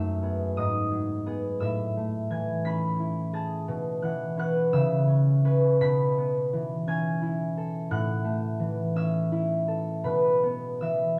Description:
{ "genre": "classical, solo harp piece", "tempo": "57 BPM (dotted quarters)", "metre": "6/8", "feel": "uneven beats, rubato", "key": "unclear", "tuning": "A4 = 440 Hz", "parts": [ { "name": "concert harp", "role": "solo", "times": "0.0-11.2 s", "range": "F#2 to B6", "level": "-27 LUFS", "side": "equal", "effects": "none" } ], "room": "moderate stone room reverb, RT60 1.0 s", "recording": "dark, warm production", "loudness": "-27 LUFS", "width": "mono", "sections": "0.0-11.2 A section", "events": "none", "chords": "0.0 F#m11; 0.6 G#m7; 1.6 Amaj7; 3.7 B9sus4; 4.7 C#m7; 5.8 B11; 7.9 Aadd9; 10.0 B9sus4", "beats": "0.56 | 1.61 2.65 | 3.67 4.71 | 5.82 6.88 | 7.90 8.96 | 10.04 11.19" }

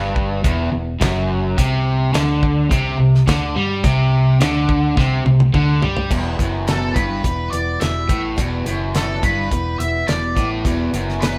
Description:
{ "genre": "classic rock", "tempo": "106 BPM", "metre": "4/4", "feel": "straight", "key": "E minor", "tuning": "A4 = 440 Hz", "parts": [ { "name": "crunchy overdriven guitar", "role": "riff", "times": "0.0-11.4 s", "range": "E2 to G3", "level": "-24 LUFS", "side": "equal", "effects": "none" }, { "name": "crunchy overdriven guitar", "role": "riff", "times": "0.0-6.1 s", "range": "E2 to G3", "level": "-22 LUFS", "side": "equal", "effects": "none" }, { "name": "fingered electric bass", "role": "bass", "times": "0.0-11.4 s", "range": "E1 to G2", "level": "-26 LUFS", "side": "equal", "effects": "none" }, { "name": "damped 70s drum kit", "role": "drums", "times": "0.2-11.4 s", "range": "crash cymbal, hi-hat, kick drum, snare drum, toms", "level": "-23 LUFS", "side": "equal", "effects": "none" }, { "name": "picked steel-string acoustic guitar", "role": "accompaniment", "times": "6.1-11.4 s", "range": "E2 to G4", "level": "-28 LUFS", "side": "equal", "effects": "none" }, { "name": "octave-fuzz lead guitar", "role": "melody", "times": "6.7-11.4 s", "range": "A4 to E5", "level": "-26 LUFS", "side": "equal", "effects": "wah, distortion" } ], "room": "moderate stone room reverb, RT60 1.2 s", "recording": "band playing live in one room", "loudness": "-18 LUFS", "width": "mono", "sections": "0.0-6.1 A section; 6.1-11.4 B section", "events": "drum fill 5.0-6.1", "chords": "0.0 Em; 1.6 C5; 6.1 Em", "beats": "0.43 1.00 | 1.57 2.13 2.70 3.27 | 3.83 4.40 4.97 5.54 | 6.10 6.67 7.24 7.80 | 8.37 8.94 9.51 10.08 | 10.64 11.21" }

